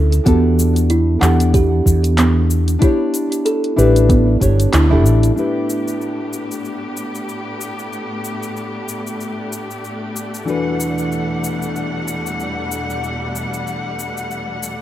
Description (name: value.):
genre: sunset chillout.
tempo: 94 BPM.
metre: 4/4.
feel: swing 57% on 16ths.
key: unclear.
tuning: A4 = 439 Hz.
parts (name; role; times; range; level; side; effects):
nylon-string guitar; accompaniment; 0.0-14.8 s; E3 to F#5; -21 LUFS; moving between left 5 dB and right 3 dB; auto-pan, tape echo.
mellow fretless electric bass; bass; 0.0-5.3 s; E1 to E2; -14 LUFS; equal; ensemble chorus.
deep house drum kit; drums; 0.1-14.8 s; cabasa, handclaps, hi-hat; -25 LUFS; left 1 dB; overdrive.
kalimba; arpeggios; 0.3-4.9 s; B3 to A4; -20 LUFS; right 2 dB; tape echo.
electronic kick drum; drums; 0.3-4.6 s; none; -15 LUFS; equal; overdrive.
rich symphonic string section; sustained chords; 5.4-14.8 s; E2 to F#5; -24 LUFS; left 1 dB; none.
room: light reverb, small room ambience.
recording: rough home demo mix.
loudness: -15 LUFS.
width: side -13 dB against mid.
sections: 0.0-5.4 A section; 5.4-14.8 B section.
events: band accent 4.7-5.1.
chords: 0.3 Em11; 2.8 A9sus4; 10.5 Em11.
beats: | 0.26 0.90 1.54 2.18 | 2.82 3.46 4.09 4.73 | 5.37 6.01 6.65 7.29 | 7.92 8.56 9.20 9.84 | 10.48 11.12 11.75 12.39 | 13.03 13.67 14.31.